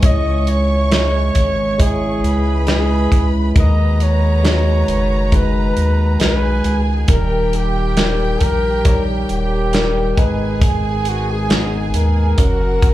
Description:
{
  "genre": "pop ballad",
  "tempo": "68 BPM",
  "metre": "4/4",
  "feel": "straight",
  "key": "G# minor",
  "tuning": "A4 = 440 Hz",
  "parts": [
    { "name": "warm flugelhorn", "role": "melody", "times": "0.0-12.9 s", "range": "F#4 to D#5", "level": "-22 LUFS", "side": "right 1 dB", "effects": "slapback echo, tape echo" },
    { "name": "warm studio violin section", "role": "second line", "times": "0.0-12.9 s", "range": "F#4 to C#6", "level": "-26 LUFS", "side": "right 1 dB", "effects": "slapback echo, tape echo" },
    { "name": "tine electric piano", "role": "accompaniment", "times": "0.0-12.9 s", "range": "G#2 to C#5", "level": "-20 LUFS", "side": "left 1 dB", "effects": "wide subtle chorus" },
    { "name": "pedal harmonium", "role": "sustained chords", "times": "0.0-12.9 s", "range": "C#3 to G#4", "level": "-31 LUFS", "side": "right 3 dB", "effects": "none" },
    { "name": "warm sub bass", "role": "bass", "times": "0.0-12.9 s", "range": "D#1 to D#2", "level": "-18 LUFS", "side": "equal", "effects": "none" },
    { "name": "modern studio drum kit", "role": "drums", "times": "0.0-12.9 s", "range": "hi-hat, kick drum, snare drum", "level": "-16 LUFS", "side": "equal", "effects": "none" }
  ],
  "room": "little or no reverb",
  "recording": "live gig heard through the venue's PA, club ambience",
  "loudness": "-14 LUFS",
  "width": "side -14 dB against mid",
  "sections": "0.0-12.9 A section",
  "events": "none",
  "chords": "0.0 C#m; 3.6 B6; 7.1 D#; 10.2 G#m; 12.4 F#",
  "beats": "| 0.03 0.91 1.79 2.67 | 3.56 4.44 5.32 6.20 | 7.09 7.97 8.85 9.73 | 10.62 11.50 12.38"
}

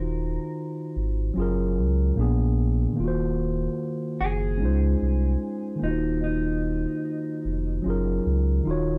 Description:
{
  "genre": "lo-fi hip hop",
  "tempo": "74 BPM",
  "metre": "4/4",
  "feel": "swing 65% on 16ths",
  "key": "Eb dorian",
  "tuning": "A4 = 438 Hz",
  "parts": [
    { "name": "mellow electric guitar", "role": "melody", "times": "0.0-8.6 s", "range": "Eb4 to Bb4", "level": "-34 LUFS", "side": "equal", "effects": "plate reverb" },
    { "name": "mellow tine electric piano", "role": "accompaniment", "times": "0.0-9.0 s", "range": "Bb2 to Db5", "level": "-29 LUFS", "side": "equal", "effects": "cassette tape" },
    { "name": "sub bass with octave", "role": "bass", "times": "0.0-9.0 s", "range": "Eb1 to Db2", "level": "-28 LUFS", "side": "equal", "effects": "none" }
  ],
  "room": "light reverb",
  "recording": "dark, warm production",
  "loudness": "-25 LUFS",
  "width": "mono",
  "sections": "0.0-9.0 A section",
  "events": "none",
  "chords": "0.0 Ebm69; 1.4 Gbmaj9; 2.2 Bb7b9; 3.0 Ebm69; 4.6 Dbmaj7; 5.8 Ebm69; 7.8 Gbmaj9",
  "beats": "0.55 1.36 2.17 | 2.98 3.79 4.61 5.42 | 6.23 7.04 7.85 8.66"
}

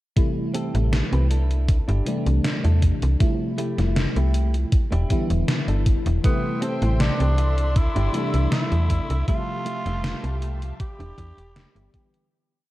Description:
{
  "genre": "vaporwave",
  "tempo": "79 BPM",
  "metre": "4/4",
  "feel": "straight",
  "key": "unclear",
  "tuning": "A4 = 442 Hz",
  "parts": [
    { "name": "FM electric piano with soft pad layer", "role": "accompaniment", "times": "0.2-12.3 s", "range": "C3 to E5", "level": "-27 LUFS", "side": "left 1 dB", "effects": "wide subtle chorus, cassette tape, diffuse ambient delay" },
    { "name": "electronic kick drum", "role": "drums", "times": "0.2-12.1 s", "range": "none", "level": "-21 LUFS", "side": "equal", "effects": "overdrive, small room reverb" },
    { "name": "gated 80s digital drum machine", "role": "drums", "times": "0.2-12.3 s", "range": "hi-hat, snare drum", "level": "-28 LUFS", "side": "equal", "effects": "gated reverb, gated reverb snare, overdrive, small room reverb" },
    { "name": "clean electric guitar", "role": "riff", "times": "0.5-12.2 s", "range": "A3 to C5", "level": "-34 LUFS", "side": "right 2 dB", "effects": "wide subtle chorus, diffuse ambient delay" },
    { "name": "slap-like FM bass", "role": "bass", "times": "0.7-11.9 s", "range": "E1 to E2", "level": "-21 LUFS", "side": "equal", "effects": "tube saturation" },
    { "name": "raspy tenor saxophone", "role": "melody", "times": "6.2-11.9 s", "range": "B3 to G4", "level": "-30 LUFS", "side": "equal", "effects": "vintage 12-bit sampler grit, tape echo" },
    { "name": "rich studio string section", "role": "sustained chords", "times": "6.2-12.3 s", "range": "G4 to C6", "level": "-37 LUFS", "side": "left 2 dB", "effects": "vintage 12-bit sampler grit" }
  ],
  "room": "light reverb",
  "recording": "none",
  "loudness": "-20 LUFS",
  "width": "side -16 dB against mid",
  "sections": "0.2-12.3 groove",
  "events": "fade-out 8.3-12.3",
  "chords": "0.2 Am7; 1.3 C69; 3.2 Fmaj9; 4.7 Em7; 6.2 Am7; 7.4 C69; 9.3 Fmaj9; 10.8 Em7",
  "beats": "| 0.17 0.93 1.69 2.45 | 3.21 3.96 4.72 5.48 | 6.24 7.00 7.76 8.52 | 9.28 10.04 10.80 11.56"
}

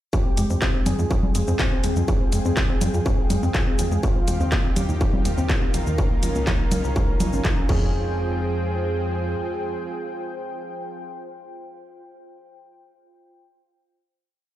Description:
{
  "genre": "melodic techno",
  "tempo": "123 BPM",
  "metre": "4/4",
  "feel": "straight",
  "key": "F minor",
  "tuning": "A4 = 441 Hz",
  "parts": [
    { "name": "wide unison lead", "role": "melody", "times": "0.1-11.0 s", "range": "F4 to Bb4", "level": "-31 LUFS", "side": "right 2 dB", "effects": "sidechain pumping, digital delay" },
    { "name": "soft round pluck", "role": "arpeggios", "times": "0.1-8.1 s", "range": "Db3 to F5", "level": "-29 LUFS", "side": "left 1 dB", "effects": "chorus, sidechain pumping, ping-pong delay" },
    { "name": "electronic kick drum", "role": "drums", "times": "0.1-7.8 s", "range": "none", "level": "-22 LUFS", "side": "equal", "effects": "distortion" },
    { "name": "techno drum kit", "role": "drums", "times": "0.1-7.8 s", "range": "congas, crash cymbal, handclaps, hi-hat, shaker", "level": "-29 LUFS", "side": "right 1 dB", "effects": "none" },
    { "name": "ethereal airy pad", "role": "texture", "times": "0.9-11.4 s", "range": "C4 to Ab5", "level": "-33 LUFS", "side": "left 1 dB", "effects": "ensemble chorus, built-in reverb, sidechain pumping" },
    { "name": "tight sequencer bass", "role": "bass", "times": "0.4-9.4 s", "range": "Ab1 to F2", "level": "-24 LUFS", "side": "equal", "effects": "tube saturation, sidechain pumping" },
    { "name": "lush unison pad", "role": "sustained chords", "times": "4.0-11.0 s", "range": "Db3 to G5", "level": "-33 LUFS", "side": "right 1 dB", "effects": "chorus, sidechain pumping" }
  ],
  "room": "digital ambience",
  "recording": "played on a big sound system in a bare room, large studio reverb",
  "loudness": "-20 LUFS",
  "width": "side -13 dB against mid",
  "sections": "0.1-7.9 drop; 7.9-11.8 final note",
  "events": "drop 0.1-7.9",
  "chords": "0.1 Fmadd9; 4.0 Ebadd9; 6.0 Dbadd9; 7.7 Fmadd9",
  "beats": "| 0.13 0.62 1.11 1.59 | 2.08 2.57 3.06 3.55 | 4.03 4.52 5.01 5.50 | 5.99 6.47 6.96 7.45 | 7.94 8.42 8.91 9.40 | 9.89 10.38 10.86 11.35"
}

